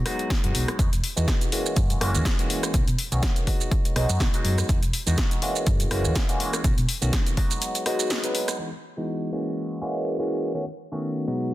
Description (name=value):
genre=filtered disco house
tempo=123 BPM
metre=4/4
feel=swing 55% on 16ths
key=E major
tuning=A4 = 441 Hz
part: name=barky tine electric piano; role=accompaniment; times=0.0-11.5 s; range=B2 to B4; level=-28 LUFS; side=equal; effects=phaser, sidechain pumping, low-pass filter
part: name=punchy analog drum machine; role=drums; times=0.1-8.6 s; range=hi-hat, rim click, shaker, snare drum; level=-28 LUFS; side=equal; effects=overdrive, sidechain pumping on hats, low-pass filter on hats, low-pass filter on snare, sidechain pumping on perc, low-pass filter on perc
part: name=electronic kick drum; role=drums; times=0.3-7.5 s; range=none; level=-24 LUFS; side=equal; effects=overdrive
part: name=hollow-body short-scale fingered electric bass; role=bass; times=0.4-7.1 s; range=E1 to B2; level=-25 LUFS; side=equal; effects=sidechain pumping, low-pass filter
room=digital ambience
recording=dense, heavily limited modern master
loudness=-22 LUFS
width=side -16 dB against mid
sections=0.0-8.6 A section; 8.6-11.5 B section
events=kick drops out 7.6-8.6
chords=0.0 G#m7; 0.8 Emaj7; 1.8 F#7; 2.7 B7; 3.7 G#m7/B; 4.7 Emaj7; 5.7 F#7; 6.6 B7; 7.6 G#m7; 8.6 Emaj7; 9.6 F#7; 10.5 B7